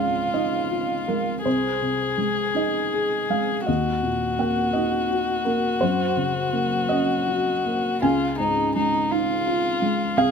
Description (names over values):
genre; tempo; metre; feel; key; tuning
neoclassical piano and strings; 55 BPM (dotted quarters); 6/8; rubato; Db major; A4 = 440 Hz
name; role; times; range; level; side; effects
dark violin; melody; 0.0-10.3 s; Eb4 to Ab4; -24 LUFS; left 3 dB; none
felt-muted upright piano; accompaniment; 0.0-10.3 s; C2 to Ab5; -23 LUFS; right 1 dB; none
room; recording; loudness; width
moderate booth ambience, RT60 0.3 s; none; -21 LUFS; side -6 dB against mid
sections
0.0-10.3 A section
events
none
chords
0.0 Dbadd9; 1.5 Ab/C; 3.7 Ebm; 5.8 Gb6; 8.0 Dbadd9